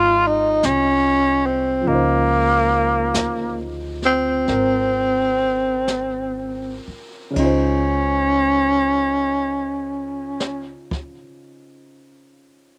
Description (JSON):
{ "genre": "jazz ballad", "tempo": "39-50 BPM", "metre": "4/4", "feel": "swing 67% on 8ths", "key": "Db major", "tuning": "A4 = 440 Hz", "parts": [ { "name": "growling tenor saxophone", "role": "melody", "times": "0.0-10.7 s", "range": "Bb3 to F4", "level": "-20 LUFS", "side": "equal", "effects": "none" }, { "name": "warm grand piano", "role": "accompaniment", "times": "0.0-12.8 s", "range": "Db3 to Eb5", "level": "-29 LUFS", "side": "equal", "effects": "none" }, { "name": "upright bass", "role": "bass", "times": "0.0-10.7 s", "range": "Ab1 to D2", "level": "-30 LUFS", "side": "equal", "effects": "none" }, { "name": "jazz brush drum kit", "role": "drums", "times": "0.6-11.4 s", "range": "brushed snare drum, hi-hat, kick drum, ride cymbal, snare drum", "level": "-33 LUFS", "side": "equal", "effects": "none" } ], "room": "little or no reverb", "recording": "recorded outdoors, with no room sound", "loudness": "-20 LUFS", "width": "mono", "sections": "0.0-7.4 A section; 7.4-12.8 B section", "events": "slowing down 0.0-7.4", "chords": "0.0 Dbmaj9" }